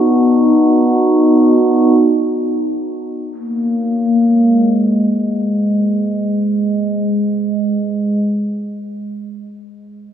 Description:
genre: world meditative, free-time meditation music.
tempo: free time.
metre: none.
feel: none.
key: unclear.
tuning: A4 = 439 Hz.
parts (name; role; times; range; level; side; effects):
glass harmonica; solo; 0.0-8.2 s; G#3 to F#4; -13 LUFS; equal; none.
room: wet huge ambient reverb, RT60 5.0 s.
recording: none.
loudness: -12 LUFS.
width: side -9 dB against mid.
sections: 0.0-4.2 A section; 4.2-8.5 B section.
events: none.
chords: none.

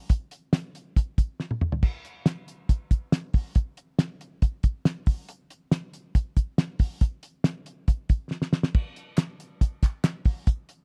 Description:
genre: indie pop.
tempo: 139 BPM.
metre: 4/4.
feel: straight.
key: none.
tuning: none.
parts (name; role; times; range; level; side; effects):
cloth-damped thuddy drum kit; drums; 0.1-10.8 s; crash cymbal, hi-hat, kick drum, snare drum, toms; -24 LUFS; equal; none.
group handclap; percussion; 9.2-10.1 s; none; -42 LUFS; equal; none.
room: small room ambience.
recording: dry, close 1970s-style studio recording.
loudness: -27 LUFS.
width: mono.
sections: 0.0-1.8 A section; 1.8-10.8 B section.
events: drum fill 1.4-1.8, 8.3-8.7.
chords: none.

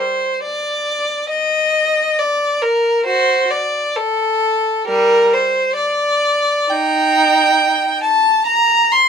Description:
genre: classical, baroque-style suite movement for unaccompanied violin.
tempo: 67 BPM.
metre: 4/4.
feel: rubato.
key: unclear.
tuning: A4 = 440 Hz.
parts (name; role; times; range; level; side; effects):
rich violin; solo; 0.0-9.1 s; G3 to C6; -13 LUFS; equal; none.
room: light reverb.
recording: none.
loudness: -14 LUFS.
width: side -7 dB against mid.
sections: 0.0-9.1 A section.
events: none.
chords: none.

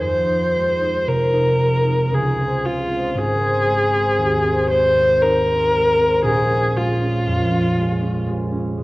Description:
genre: classical, impressionist duo for viola and harp.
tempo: 58 BPM.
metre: 3/4.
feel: rubato.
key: Ab major.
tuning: A4 = 440 Hz.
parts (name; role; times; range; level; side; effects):
rich viola; melody; 0.0-8.3 s; F4 to C5; -18 LUFS; equal; none.
concert harp; accompaniment; 0.0-8.8 s; Ab1 to Ab4; -20 LUFS; equal; none.
room: wet recital hall reverb, RT60 1.7 s.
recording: worn, warbling old tape, cassette tape, warbly pitch drift.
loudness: -16 LUFS.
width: side -19 dB against mid.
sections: 0.0-8.8 A section.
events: none.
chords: 0.0 Fm7; 2.1 Dbmaj7; 3.2 Ab; 6.3 Bbm7.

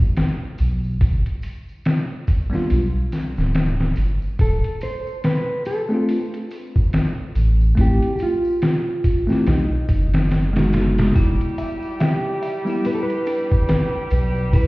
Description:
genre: trip hop.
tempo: 71 BPM.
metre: 4/4.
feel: swing 59% on 16ths.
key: unclear.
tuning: A4 = 438 Hz.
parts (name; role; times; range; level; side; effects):
trip hop sampler-style drum kit; drums; 0.2-14.7 s; hi-hat, kick drum, snare drum; -19 LUFS; equal; small room ambience.
tambourine and triangle; percussion; 0.2-14.7 s; none; -57 LUFS; right 1 dB; none.
soft dub sub bass; bass; 0.6-14.7 s; D1 to B1; -19 LUFS; equal; tube saturation.
bell-like tine electric piano; accompaniment; 2.5-12.9 s; G3 to G4; -24 LUFS; left 1 dB; harmonic tremolo, tape echo.
mellow electric guitar; melody; 4.4-14.7 s; D#4 to C5; -25 LUFS; right 1 dB; tape echo.
rich studio violin section; sustained chords; 11.1-14.7 s; G3 to G4; -31 LUFS; right 2 dB; none.
music box; arpeggios; 11.2-14.7 s; D4 to E5; -27 LUFS; equal; tape echo.
room: light reverb.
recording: heard muffled through a wall, stone room reverb, EQ.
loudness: -18 LUFS.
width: side -21 dB against mid.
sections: 0.0-11.2 A section; 11.2-14.7 B section.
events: none.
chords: 0.0 N.C.; 1.0 G7; 4.4 Dm7; 7.8 Am7; 9.5 B6; 11.2 Em.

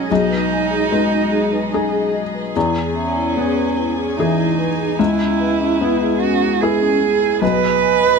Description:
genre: neoclassical piano and strings.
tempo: 74 BPM.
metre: 3/4.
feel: rubato.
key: G# minor.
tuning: A4 = 440 Hz.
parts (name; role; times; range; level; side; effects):
dark cello; second line; 0.0-8.2 s; C#4 to B4; -19 LUFS; right 10 dB; none.
felt-muted upright piano; accompaniment; 0.0-8.2 s; B1 to G#4; -19 LUFS; left 4 dB; none.
dark chamber string section; sustained chords; 0.0-8.2 s; G#3 to G#5; -29 LUFS; equal; none.
vibraphone with soft mallets; arpeggios; 0.1-8.1 s; C#4 to G#5; -24 LUFS; left 2 dB; slapback echo.
room: little or no reverb.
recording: none.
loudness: -15 LUFS.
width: side -5 dB against mid.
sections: 0.0-8.2 A section.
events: none.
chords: 0.1 G#m/B; 2.6 E; 5.0 C#m7; 7.4 B6.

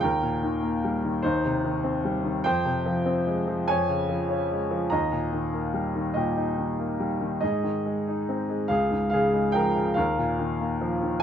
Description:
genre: classical, lyrical solo piano.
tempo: 48 BPM (dotted quarters).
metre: 6/8.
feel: rubato.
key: unclear.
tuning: A4 = 440 Hz.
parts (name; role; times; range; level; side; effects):
bright baby grand piano; solo; 0.0-11.2 s; Db2 to Bb5; -23 LUFS; equal; none.
room: light reverb.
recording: dark, warm production.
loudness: -24 LUFS.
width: side -8 dB against mid.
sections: 0.0-11.2 A section.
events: none.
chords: 0.0 Eb; 1.2 Cm/Eb; 2.4 Fm; 3.7 Db/F; 4.9 Eb; 7.4 Ab; 8.7 Db; 10.0 Ebsus2.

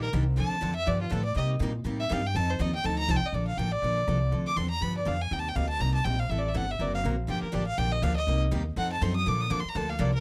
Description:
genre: acoustic string swing (jazz manouche).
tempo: 243 BPM.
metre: 4/4.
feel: swing 56% on 8ths.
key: Bb major.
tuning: A4 = 440 Hz.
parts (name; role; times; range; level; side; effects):
clear violin; melody; 0.0-10.2 s; F4 to Eb6; -33 LUFS; equal; none.
picked steel-string acoustic guitar; accompaniment; 0.0-10.1 s; C3 to A#4; -36 LUFS; equal; none.
picked steel-string acoustic guitar; accompaniment; 0.0-3.2, 7.3-10.1 s; C3 to A4; -41 LUFS; equal; none.
upright bass; bass; 0.0-10.2 s; F#1 to C3; -31 LUFS; equal; none.
room: little or no reverb.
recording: close, detailed microphones.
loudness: -28 LUFS.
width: mono.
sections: 0.0-3.3 A section; 3.3-10.2 A section.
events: violin solo 0.0-10.2.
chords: 0.4 Dm7; 0.9 G7; 1.4 Cm7; 2.3 F7; 3.3 Bbmaj7; 4.3 Dm9; 4.8 G7; 5.3 Cm9; 6.3 Am7; 6.8 Daug7; 7.3 Gm9; 8.3 Cm7; 8.8 F7b9; 9.3 Bbmaj7.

